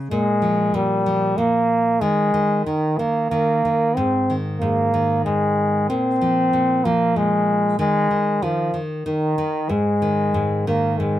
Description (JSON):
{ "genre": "children's music, lullaby", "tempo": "94 BPM", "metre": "3/4", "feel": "rubato", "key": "Ab major", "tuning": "A4 = 436 Hz", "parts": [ { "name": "nylon-string guitar", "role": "accompaniment", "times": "0.0-11.2 s", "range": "Ab2 to F3", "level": "-24 LUFS", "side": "equal", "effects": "none" }, { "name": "clear trombone", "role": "melody", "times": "0.1-11.2 s", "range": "Eb3 to C4", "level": "-18 LUFS", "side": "equal", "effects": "none" } ], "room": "light reverb", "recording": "none", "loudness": "-17 LUFS", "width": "side -12 dB against mid", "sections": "0.0-11.2 A section", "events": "none", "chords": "0.1 Bb5; 2.0 N.C.; 4.0 Ab5; 5.9 Bbsus2; 7.8 N.C.; 9.7 Ab5", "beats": "| 0.11 0.75 1.38 | 2.02 2.67 3.32 | 3.98 4.63 5.27 | 5.91 6.54 7.17 | 7.80 8.42 9.06 | 9.70 10.34 10.99" }